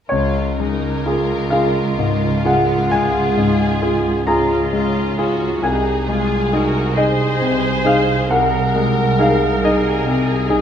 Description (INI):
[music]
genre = classical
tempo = 42-47 BPM (dotted quarters)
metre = 12/8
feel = rubato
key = Db major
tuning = A4 = 436 Hz
[part]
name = clear concert grand piano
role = melody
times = 0.1-10.6 s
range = C2 to Bb5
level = -17 LUFS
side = left 1 dB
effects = none
[part]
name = warm symphonic violin section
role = second line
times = 0.1-10.6 s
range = Db4 to Bb4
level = -26 LUFS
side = left 2 dB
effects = none
[part]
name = rich chamber double bass section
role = bass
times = 0.1-10.6 s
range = C2 to Db2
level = -24 LUFS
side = right 4 dB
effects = none
[part]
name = rich symphonic cello section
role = bass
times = 0.1-10.6 s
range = C2 to Db2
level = -25 LUFS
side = right 3 dB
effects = none
[part]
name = rich symphonic viola section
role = accompaniment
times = 2.9-10.6 s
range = F4 to C5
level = -23 LUFS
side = right 1 dB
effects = none
[sound]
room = wet recital hall reverb, RT60 1.3 s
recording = none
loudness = -15 LUFS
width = side -8 dB against mid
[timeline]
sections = 0.1-10.6 A section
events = none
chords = 0.1 Db; 5.6 Ab/C